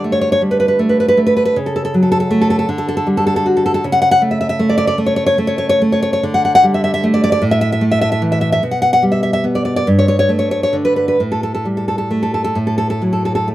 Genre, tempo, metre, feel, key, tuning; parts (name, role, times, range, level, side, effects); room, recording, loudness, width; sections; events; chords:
romantic piece for solo classical guitar; 43-54 BPM (dotted quarters); 6/8; rubato; A4 = 440 Hz
nylon-string guitar; solo; 0.0-13.5 s; G2 to F#5; -13 LUFS; equal
moderate studio reverb, RT60 0.5 s; band playing live in one room; -13 LUFS; side -14 dB against mid
0.0-13.5 A section
0.0 D5; 1.6 A/C#; 2.7 D; 3.8 A/C#; 6.2 D5; 7.4 A5; 8.6 Em9/B; 9.9 G5; 11.2 Gsus2/A; 12.6 F#m/A